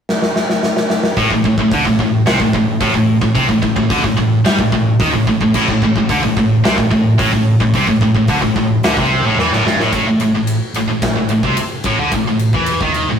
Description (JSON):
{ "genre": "hard rock", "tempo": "110 BPM", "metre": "4/4", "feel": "straight", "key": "A minor", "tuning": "A4 = 440 Hz", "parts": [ { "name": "big rock drum kit", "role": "drums", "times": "0.1-13.1 s", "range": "crash cymbal, hi-hat, kick drum, ride cymbal, snare drum", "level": "-18 LUFS", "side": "left 1 dB", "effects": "none" }, { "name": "heavy high-gain guitar", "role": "riff", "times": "1.2-13.2 s", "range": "G2 to G3", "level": "-14 LUFS", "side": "equal", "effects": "distortion" }, { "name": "overdriven picked electric bass", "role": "bass", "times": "1.2-13.2 s", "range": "G1 to G2", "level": "-22 LUFS", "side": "equal", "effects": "none" } ], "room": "moderate stone room reverb, RT60 1.1 s", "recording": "rough rehearsal-room recording, warm saturation", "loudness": "-12 LUFS", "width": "side -7 dB against mid", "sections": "0.0-1.2 A section; 1.2-9.9 B section; 9.9-13.2 C section", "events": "drum fill 0.1-1.2, 9.4-9.9", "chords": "0.0 N.C.; 1.2 Am; 9.9 A5", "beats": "0.08 0.63 | 1.18 1.72 2.27 2.81 | 3.36 3.90 4.45 5.00 | 5.54 6.09 6.64 7.18 | 7.73 8.28 8.83 9.38 | 9.92 10.47 11.02 11.57 | 12.12 12.67" }